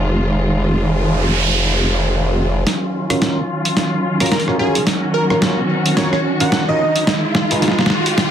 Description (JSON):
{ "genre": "glitch hop", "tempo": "109 BPM", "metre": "4/4", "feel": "swing 59% on 16ths", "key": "Eb minor", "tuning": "A4 = 441 Hz", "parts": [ { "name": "dark symphonic string section", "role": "sustained chords", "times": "0.0-8.3 s", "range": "Eb3 to Gb4", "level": "-20 LUFS", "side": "equal", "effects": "low-pass filter" }, { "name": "formant-sweep wobble bass", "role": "bass", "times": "0.0-2.6 s", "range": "F1", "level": "-18 LUFS", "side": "equal", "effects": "chorus" }, { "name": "noise sweep and riser", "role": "sound effects", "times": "0.7-8.3 s", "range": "none", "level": "-23 LUFS", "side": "right 2 dB", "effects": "none" }, { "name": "boom bap sampler-style drum kit", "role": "drums", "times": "2.7-8.3 s", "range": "hi-hat, rim click, snare drum", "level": "-18 LUFS", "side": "equal", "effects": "soft clipping on snare" }, { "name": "overdriven clav", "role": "stabs", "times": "3.1-7.8 s", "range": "Db4 to Cb5", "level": "-22 LUFS", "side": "right 1 dB", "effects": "vintage 12-bit sampler grit, low-pass filter, ping-pong delay" }, { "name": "plucky unison lead", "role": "melody", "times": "4.2-7.1 s", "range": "Ab4 to Gb5", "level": "-21 LUFS", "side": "equal", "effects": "cassette tape, ping-pong delay" } ], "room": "moderate studio reverb, RT60 0.6 s", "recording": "dense, heavily limited modern master", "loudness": "-14 LUFS", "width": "side -9 dB against mid", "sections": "0.0-2.7 A section; 2.7-8.3 B section", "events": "noise sweep 0.7-2.7; build-up 2.7-8.3; drum fill 2.7-8.3; riser 2.7-8.3; filter sweep on clav 2.7-8.3; filter sweep on string section 2.7-8.3", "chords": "0.0 Fm7; 2.7 Ebm9; 7.1 Fm7b5", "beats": "| 0.47 1.02 1.57 2.12 | 2.67 3.22 3.77 4.32 | 4.87 5.42 5.97 6.52 | 7.08 7.62 8.18" }